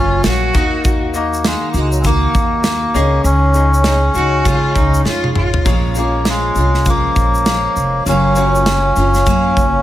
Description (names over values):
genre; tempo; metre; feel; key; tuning
acoustic pop; 100 BPM; 4/4; swing 60% on 16ths; Bb minor; A4 = 441 Hz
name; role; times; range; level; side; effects
melodica; melody; 0.0-9.8 s; Gb3 to Db4; -17 LUFS; equal; digital delay
rich cello; second line; 0.0-5.8 s; Eb4 to Gb4; -21 LUFS; equal; none
bright concert grand piano; accompaniment; 0.0-9.8 s; Bb3 to F5; -26 LUFS; left 7 dB; none
picked steel-string acoustic guitar; accompaniment; 0.0-9.8 s; Bb2 to Ab4; -20 LUFS; equal; double-tracked left and right
upright bass; bass; 0.0-9.8 s; F1 to Db3; -17 LUFS; equal; none
modern studio drum kit; drums; 0.2-9.7 s; kick drum, shaker, snare drum, toms; -18 LUFS; equal; none
room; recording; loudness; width
light reverb; none; -12 LUFS; side -13 dB against mid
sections
0.0-9.8 A section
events
drum fill 5.1-5.7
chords
0.0 Gbmaj7; 0.6 Ebm; 3.0 Dbsus2; 5.7 Bbm7; 8.1 Gbmaj7